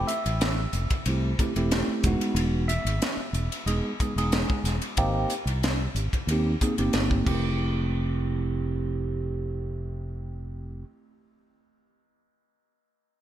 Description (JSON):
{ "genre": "electric jazz fusion", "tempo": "92 BPM", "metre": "4/4", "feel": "straight", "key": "F major", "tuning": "A4 = 440 Hz", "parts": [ { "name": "tine electric piano", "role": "accompaniment", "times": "0.0-10.8 s", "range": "G#3 to E5", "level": "-29 LUFS", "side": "right 2 dB", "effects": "phaser" }, { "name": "fingered electric bass", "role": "bass", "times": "0.0-10.8 s", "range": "E1 to Eb2", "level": "-28 LUFS", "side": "equal", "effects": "none" }, { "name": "crisp fusion drum kit", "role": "drums", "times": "0.1-7.4 s", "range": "crash cymbal, hi-hat, kick drum, ride cymbal, snare drum", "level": "-29 LUFS", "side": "equal", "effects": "gated reverb" } ], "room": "light reverb, small room ambience", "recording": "bright 1980s-style digital production", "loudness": "-24 LUFS", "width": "side -11 dB against mid", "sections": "0.0-7.6 A section; 7.6-10.2 B section", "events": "none", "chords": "0.0 Fmaj9 (rootless); 2.0 Emaj9; 5.0 Abmaj9; 7.3 Fmaj9", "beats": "0.41 1.06 1.71 | 2.36 3.02 3.67 4.32 | 4.97 5.63 6.28 6.93 | 7.59 8.24 8.90 9.55" }